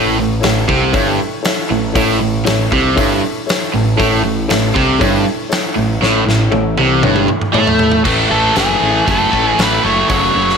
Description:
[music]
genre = classic rock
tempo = 118 BPM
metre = 4/4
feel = straight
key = A major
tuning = A4 = 440 Hz
[part]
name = dark upright piano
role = accompaniment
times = 0.0-8.0 s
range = E4 to C#5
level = -21 LUFS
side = left 4 dB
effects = none
[part]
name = cranked stack guitar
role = riff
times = 0.0-10.6 s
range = F#2 to A3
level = -14 LUFS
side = right 2 dB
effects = overdrive, spring reverb
[part]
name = growling picked electric bass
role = bass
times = 0.0-10.5 s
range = F#1 to A2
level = -19 LUFS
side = equal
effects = overdrive
[part]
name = big rock drum kit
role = drums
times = 0.4-10.6 s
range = crash cymbal, hi-hat, kick drum, snare drum, toms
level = -19 LUFS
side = equal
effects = none
[part]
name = octave-fuzz lead guitar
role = melody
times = 8.3-10.6 s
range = G#4 to C#5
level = -15 LUFS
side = left 1 dB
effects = distortion
[sound]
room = light reverb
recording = none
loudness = -11 LUFS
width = side -6 dB against mid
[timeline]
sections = 0.0-8.1 A section; 8.1-10.6 B section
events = drum fill 6.0-8.1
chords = 0.0 A; 8.1 A5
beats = 0.43 0.94 1.45 | 1.96 2.47 2.97 3.48 | 3.99 4.50 5.01 5.51 | 6.02 6.53 7.04 7.55 | 8.06 8.57 9.08 9.59 | 10.10

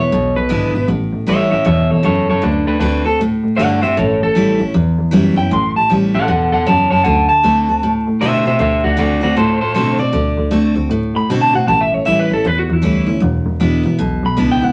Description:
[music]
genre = rockabilly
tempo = 156 BPM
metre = 4/4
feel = swing 63% on 8ths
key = A mixolydian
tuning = A4 = 440 Hz
[part]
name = electric guitar through a small old amp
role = melody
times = 0.0-14.7 s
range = D4 to C6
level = -18 LUFS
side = equal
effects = none
[part]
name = picked steel-string acoustic guitar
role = accompaniment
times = 0.0-14.7 s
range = E2 to F#4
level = -21 LUFS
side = equal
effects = none
[part]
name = bright double bass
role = bass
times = 0.0-14.7 s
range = E1 to B2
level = -19 LUFS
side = equal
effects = none
[sound]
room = wet studio reverb, RT60 0.6 s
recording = vinyl crackle, nothing above 10.5 kHz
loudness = -15 LUFS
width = mono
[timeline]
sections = 0.9-14.7 A section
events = clean electric guitar solo 0.9-14.7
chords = 0.0 E7; 0.9 A7; 2.4 D7; 4.0 A7; 7.1 D7; 11.7 A7; 13.2 E7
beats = 0.12 0.51 | 0.89 1.28 1.66 2.05 | 2.43 2.82 3.20 3.59 | 3.97 4.36 4.74 5.13 | 5.51 5.90 6.29 6.67 | 7.06 7.44 7.83 8.21 | 8.60 8.98 9.37 9.76 | 10.14 10.53 10.91 11.30 | 11.68 12.07 12.46 12.84 | 13.22 13.61 14.00 14.38

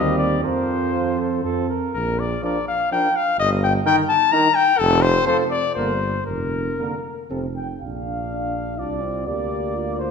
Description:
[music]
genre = classical, brass quintet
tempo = 115-129 BPM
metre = 3/4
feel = rubato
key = Bb major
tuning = A4 = 440 Hz
[part]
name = mellow cornet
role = melody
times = 0.0-10.1 s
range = A4 to Bb5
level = -21 LUFS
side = left 5 dB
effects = none
[part]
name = mellow flugelhorn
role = second line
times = 0.0-10.1 s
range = F4 to G5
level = -30 LUFS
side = right 5 dB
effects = none
[part]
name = clear trombone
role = accompaniment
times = 0.0-10.1 s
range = C3 to D4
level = -30 LUFS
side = right 5 dB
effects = none
[part]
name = dark French horn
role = accompaniment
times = 0.0-10.1 s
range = Bb3 to G4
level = -28 LUFS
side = left 1 dB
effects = none
[part]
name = dark bass trombone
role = bass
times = 0.0-10.1 s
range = F1 to F2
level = -25 LUFS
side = right 2 dB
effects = none
[sound]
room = wet concert hall reverb, RT60 1.9 s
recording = minimal, uncompressed stereo recording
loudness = -19 LUFS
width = side -6 dB against mid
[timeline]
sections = 0.0-7.8 A section; 7.8-10.1 B section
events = none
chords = 0.4 Fsus4; 1.9 Bb; 3.4 Eb/G; 4.8 F; 5.8 Gm; 6.3 Bb/F; 7.3 F; 7.8 Bb; 9.3 Bb/D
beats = | 0.43 0.93 1.44 | 1.94 2.43 2.91 | 3.38 3.85 4.32 | 4.79 5.27 5.76 | 6.27 6.79 7.30 | 7.82 8.31 8.79 | 9.27 9.76

